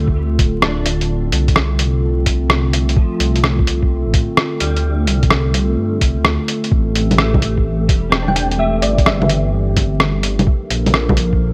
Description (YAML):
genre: future garage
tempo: 128 BPM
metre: 4/4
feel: swing 67% on 16ths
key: D minor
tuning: A4 = 440 Hz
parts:
  - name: clean electric guitar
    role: accompaniment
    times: 0.0-9.2 s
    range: F3 to D4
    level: -30 LUFS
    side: equal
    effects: ensemble chorus, sidechain pumping, tape echo
  - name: warbly tape-like pad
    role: sustained chords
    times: 0.0-11.5 s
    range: D3 to Bb4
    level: -25 LUFS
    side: equal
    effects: chorus, built-in reverb, vintage 12-bit sampler grit, sidechain pumping
  - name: dark detuned saw bass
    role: bass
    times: 0.0-11.5 s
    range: D1 to G2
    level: -20 LUFS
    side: equal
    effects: sidechain pumping
  - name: electronic kick drum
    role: drums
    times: 0.1-11.4 s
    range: none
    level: -18 LUFS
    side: equal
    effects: none
  - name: lo-fi sampler-style drum kit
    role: drums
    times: 0.4-11.3 s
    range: bongos, hi-hat, rim click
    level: -19 LUFS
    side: equal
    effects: none
  - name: thumb-piano-like synth pluck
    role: melody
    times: 8.3-9.5 s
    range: D5 to G5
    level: -24 LUFS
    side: equal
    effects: ensemble chorus, tape echo
room: light reverb, digital ambience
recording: vinyl crackle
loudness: -16 LUFS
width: mono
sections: 0.0-11.5 A section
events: none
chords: 0.0 Dm7; 6.7 Am7; 10.5 Bbmaj7